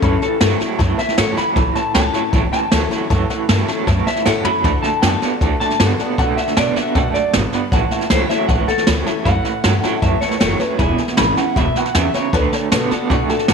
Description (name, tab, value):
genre	rockabilly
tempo	156 BPM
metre	4/4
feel	straight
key	A mixolydian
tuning	A4 = 440 Hz
part	electric guitar through a small old amp	melody	0.0-13.5 s	C#4 to B5	-21 LUFS	left 1 dB	tape echo
part	honky-tonk upright piano	accompaniment	0.0-13.5 s	B4 to B5	-29 LUFS	left 11 dB	none
part	picked steel-string acoustic guitar	accompaniment	0.0-13.5 s	E2 to F#4	-25 LUFS	left 11 dB	none
part	electric guitar through a small old amp	riff	0.0-13.5 s	E2 to B3	-22 LUFS	right 11 dB	tremolo
part	upright bass	bass	0.0-13.5 s	E1 to B2	-20 LUFS	equal	none
part	jazz brush drum kit	drums	0.0-13.5 s	hi-hat, kick drum, snare drum, toms	-19 LUFS	equal	none
room	light reverb, studio reverb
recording	1960s-style stereo with parts hard left and right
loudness	-14 LUFS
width	side -6 dB against mid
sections	0.0-13.5 A section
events	drum fill 4.3-4.6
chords	0.0 A; 4.6 D; 7.7 A; 10.8 E; 12.3 D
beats	| 0.03 0.41 0.80 1.18 | 1.57 1.95 2.34 2.72 | 3.11 3.49 3.88 4.26 | 4.65 5.03 5.42 5.80 | 6.18 6.57 6.95 7.34 | 7.72 8.11 8.49 8.87 | 9.26 9.64 10.03 10.41 | 10.79 11.18 11.56 11.95 | 12.34 12.72 13.11 13.49